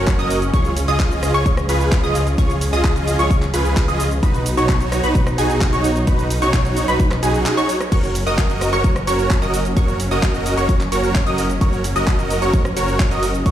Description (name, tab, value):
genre	EDM, festival progressive house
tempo	130 BPM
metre	4/4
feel	straight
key	F# major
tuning	A4 = 440 Hz
part	rich symphonic string section	sustained chords	0.0-13.5 s	E#3 to D#4	-26 LUFS	right 1 dB	sidechain pumping
part	wide unison pluck	arpeggios	0.0-13.5 s	G#5 to D#6	-25 LUFS	equal	ensemble chorus, sidechain pumping, digital delay
part	supersaw chords	riff	0.0-13.5 s	D#4 to D#5	-21 LUFS	right 1 dB	sidechain pumping, digital delay
part	detuned saw bass	bass	0.0-13.5 s	F#1 to C#2	-22 LUFS	equal	sidechain pumping
part	electronic kick drum	drums	0.1-13.5 s	none	-18 LUFS	equal	none
part	house drum kit	drums	0.1-13.5 s	crash cymbal, handclaps, hi-hat, rim click, shaker	-27 LUFS	right 1 dB	none
room	light reverb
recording	played on a big sound system in a bare room, stone room reverb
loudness	-15 LUFS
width	side -11 dB against mid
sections	0.0-13.5 A section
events	none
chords	0.0 F#; 0.5 C#; 4.2 B; 7.9 F#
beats	0.07 | 0.54 1.00 1.46 1.92 | 2.38 2.84 3.31 3.77 | 4.23 4.69 5.15 5.61 | 6.07 6.54 7.00 7.46 | 7.92 8.38 8.84 9.30 | 9.77 10.23 10.69 11.15 | 11.61 12.07 12.54 13.00 | 13.46